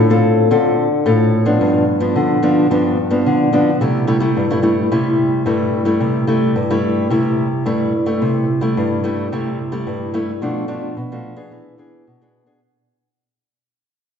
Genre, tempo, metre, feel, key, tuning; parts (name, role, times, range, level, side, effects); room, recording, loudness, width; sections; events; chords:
samba; 109 BPM; 4/4; straight; C major; A4 = 443 Hz
nylon-string guitar; solo; 0.0-12.6 s; G2 to A4; -14 LUFS; equal
wet scoring stage reverb, RT60 1.6 s; recorded in a church or concert hall, nothing above 7.9 kHz; -14 LUFS; side -7 dB against mid
0.0-8.2 A section; 8.2-12.6 B section
fade-out 8.2-12.6
0.0 Dm7; 1.6 G7; 3.8 C6; 10.4 Bm7b5; 11.5 E7